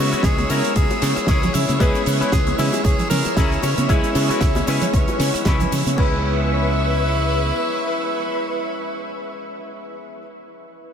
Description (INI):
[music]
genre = nu-disco, nu disco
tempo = 115 BPM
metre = 4/4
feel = swing 56% on 16ths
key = C# minor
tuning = A4 = 439 Hz
[part]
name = clear tenor saxophone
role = melody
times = 0.0-10.2 s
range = C#4 to A#4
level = -27 LUFS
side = equal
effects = analog delay
[part]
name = warm electric grand piano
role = accompaniment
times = 0.0-10.2 s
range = G#3 to B4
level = -26 LUFS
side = equal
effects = wide subtle chorus, sidechain pumping, diffuse ambient delay
[part]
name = string machine, full ensemble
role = sustained chords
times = 0.0-10.2 s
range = B4 to E6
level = -26 LUFS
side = left 1 dB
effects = ensemble chorus, sidechain pumping
[part]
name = modern bright fingered electric bass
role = bass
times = 0.0-7.5 s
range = C#2 to C#3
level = -22 LUFS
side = equal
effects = none
[part]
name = electric guitar with an envelope filter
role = riff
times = 0.1-10.2 s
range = C#4 to C#5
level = -29 LUFS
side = left 4 dB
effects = lush chorus, diffuse ambient delay
[part]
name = damped 70s drum kit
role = drums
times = 0.1-6.1 s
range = crash cymbal, hi-hat, ride cymbal, rim click, snare drum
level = -27 LUFS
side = right 1 dB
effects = none
[part]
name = cabasa, congas and bongos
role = percussion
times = 0.1-6.0 s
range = none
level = -29 LUFS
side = right 2 dB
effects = none
[part]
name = electronic kick drum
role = drums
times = 0.2-6.1 s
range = none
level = -20 LUFS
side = equal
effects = overdrive
[sound]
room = moderate huge ambient reverb, RT60 8.2 s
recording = dreamy mix soaked in reverb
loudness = -17 LUFS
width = side -8 dB against mid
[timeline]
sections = 0.0-6.0 A section; 6.0-10.2 B section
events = drop 0.0-6.0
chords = 0.0 C#m7